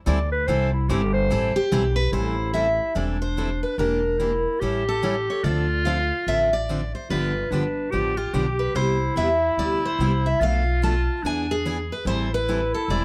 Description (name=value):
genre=acoustic string swing (jazz manouche)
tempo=145 BPM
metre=4/4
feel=swing 62% on 8ths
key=A minor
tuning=A4 = 440 Hz
part: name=breathy clarinet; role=second line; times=0.1-13.0 s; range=D4 to D5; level=-29 LUFS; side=equal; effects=none
part: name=picked steel-string acoustic guitar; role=accompaniment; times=0.1-13.0 s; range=B2 to A4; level=-30 LUFS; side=equal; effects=none
part: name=upright bass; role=bass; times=0.1-13.0 s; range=E1 to E2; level=-28 LUFS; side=equal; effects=none
part: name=picked steel-string acoustic guitar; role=melody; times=1.6-13.0 s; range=G4 to A5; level=-28 LUFS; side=equal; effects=none
room=light reverb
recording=none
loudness=-23 LUFS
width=mono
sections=0.0-2.1 A section; 2.1-13.0 B section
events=clarinet solo 0.0-2.1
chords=0.0 Am7; 3.8 Em7b5; 4.6 A7; 5.4 Dm7; 7.1 G7; 8.8 Cmaj7; 10.4 Bm7b5; 11.2 E7; 12.1 Am7